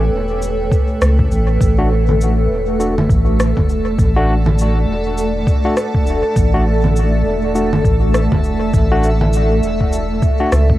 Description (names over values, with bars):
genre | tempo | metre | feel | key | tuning
ambient dub | 101 BPM | 4/4 | swing 60% on 16ths | unclear | A4 = 440 Hz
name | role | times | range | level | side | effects
granular cloud pad | sustained chords | 0.0-10.8 s | A3 to A5 | -19 LUFS | equal | built-in reverb, cassette tape
warm sub bass | bass | 0.0-10.8 s | E1 to C#2 | -16 LUFS | equal | none
electronic cabasa, rim click and congas | drums | 0.4-10.7 s | none | -22 LUFS | right 1 dB | small room reverb, cassette tape, dub echo
electronic kick drum | drums | 0.7-10.8 s | none | -16 LUFS | equal | small room reverb, cassette tape
barky tine electric piano | stabs | 1.8-10.5 s | A3 to F#4 | -23 LUFS | left 1 dB | cassette tape, dub echo
room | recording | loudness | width
digital ambience | home recording on cassette | -13 LUFS | side -15 dB against mid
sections
0.0-10.8 A section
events
none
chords
0.0 A7; 1.6 D